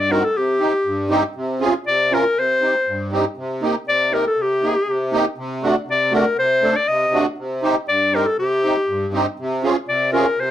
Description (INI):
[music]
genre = klezmer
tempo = 120 BPM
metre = 2/4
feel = straight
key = C dorian sharp4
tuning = A4 = 441 Hz
[part]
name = bright clarinet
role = melody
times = 0.0-10.5 s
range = G4 to Eb5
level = -17 LUFS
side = left 2 dB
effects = none
[part]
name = musette accordion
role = accompaniment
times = 0.0-10.5 s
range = G2 to Bb4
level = -20 LUFS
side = right 2 dB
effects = none
[sound]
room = moderate small room reverb, RT60 0.5 s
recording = none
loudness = -17 LUFS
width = side -11 dB against mid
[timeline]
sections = 0.0-3.4 A section; 3.4-10.5 A section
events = none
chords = 0.0 Cm; 1.4 Db/C; 2.4 Cm; 3.4 Eb/C; 5.4 D/C; 7.4 Cm; 9.4 Db/C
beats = | 0.36 0.86 | 1.36 1.87 | 2.37 2.87 | 3.38 3.88 | 4.38 4.88 | 5.38 5.88 | 6.38 6.89 | 7.39 7.89 | 8.39 8.89 | 9.39 9.89 | 10.39